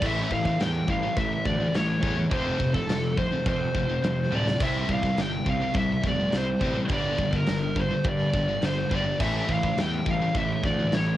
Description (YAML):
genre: heavy metal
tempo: 104 BPM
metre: 4/4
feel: straight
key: unclear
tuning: A4 = 437 Hz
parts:
  - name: high-gain lead guitar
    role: melody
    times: 0.0-11.2 s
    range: A4 to G5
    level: -29 LUFS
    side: left 1 dB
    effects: distortion
  - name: fuzz guitar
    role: riff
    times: 0.0-11.2 s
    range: F2 to C4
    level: -33 LUFS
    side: equal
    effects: distortion, cassette tape
  - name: high-gain distorted guitar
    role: riff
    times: 0.0-11.2 s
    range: F2 to C4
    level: -32 LUFS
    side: left 5 dB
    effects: distortion, cassette tape
  - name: high-gain distorted guitar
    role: riff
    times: 0.0-11.2 s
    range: F2 to C4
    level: -32 LUFS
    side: right 5 dB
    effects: distortion, cassette tape
  - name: fuzz picked electric bass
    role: bass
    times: 0.0-11.1 s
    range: D1 to G2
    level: -31 LUFS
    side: equal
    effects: overdrive
  - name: big rock drum kit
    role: drums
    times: 0.0-11.1 s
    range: china cymbal, crash cymbal, kick drum, snare drum, toms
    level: -30 LUFS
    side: equal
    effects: none
room: little or no reverb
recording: home recording on cassette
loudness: -23 LUFS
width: side -13 dB against mid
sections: 0.0-11.2 A section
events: drum fill 4.3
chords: 0.0 A5; 2.3 F5; 4.6 C5; 6.9 G5; 9.2 A5